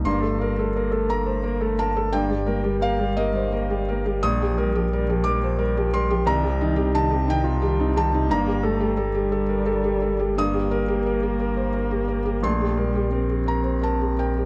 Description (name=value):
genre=neoclassical piano and strings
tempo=58 BPM (dotted quarters)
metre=6/8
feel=rubato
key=G minor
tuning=A4 = 444 Hz
part: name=felt-muted upright piano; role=accompaniment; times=0.0-14.5 s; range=Bb1 to Eb6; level=-25 LUFS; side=equal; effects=none
part: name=warm sub bass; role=bass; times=0.0-14.5 s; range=G1 to C2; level=-29 LUFS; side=equal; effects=none
part: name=muted cello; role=second line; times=0.1-14.5 s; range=C3 to C4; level=-31 LUFS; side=equal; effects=none
room=light reverb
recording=close, detailed microphones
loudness=-23 LUFS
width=mono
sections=0.1-14.5 A section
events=none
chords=0.1 Gmadd9; 2.1 Eb/G; 4.2 Bb6; 6.3 Cm7; 8.3 Gmadd9; 10.4 Eb/G; 12.4 Gmadd11/Bb